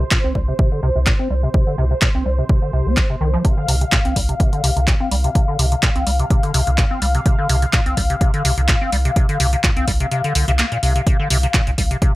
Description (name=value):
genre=acid house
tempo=126 BPM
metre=4/4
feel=swing 54% on 16ths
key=unclear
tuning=A4 = 440 Hz
part: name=warm analog pad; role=sustained chords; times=0.0-12.2 s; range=C5 to F5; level=-25 LUFS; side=left 2 dB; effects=chorus, sidechain pumping
part: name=liquid acid bass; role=riff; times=0.0-12.1 s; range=Bb2 to C4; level=-22 LUFS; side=equal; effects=chorus, tube saturation, sidechain pumping, tape echo
part: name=round analog bass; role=bass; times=0.0-11.9 s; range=C2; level=-19 LUFS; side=equal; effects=tube saturation, sidechain pumping
part: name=electronic kick drum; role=drums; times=0.1-12.1 s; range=none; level=-17 LUFS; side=equal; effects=none
part: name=punchy analog drum machine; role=drums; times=0.1-12.1 s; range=handclaps, hi-hat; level=-22 LUFS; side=equal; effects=none
room=light reverb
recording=none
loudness=-15 LUFS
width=side -18 dB against mid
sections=0.0-12.2 A section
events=filter sweep on acid bass 0.0-12.2; kick drops out 10.1-11.1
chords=none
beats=0.12 0.59 1.07 | 1.54 2.02 2.50 2.97 | 3.45 3.92 4.40 4.88 | 5.35 5.83 6.30 6.78 | 7.26 7.73 8.21 8.69 | 9.16 9.64 10.12 10.59 | 11.07 11.54 12.02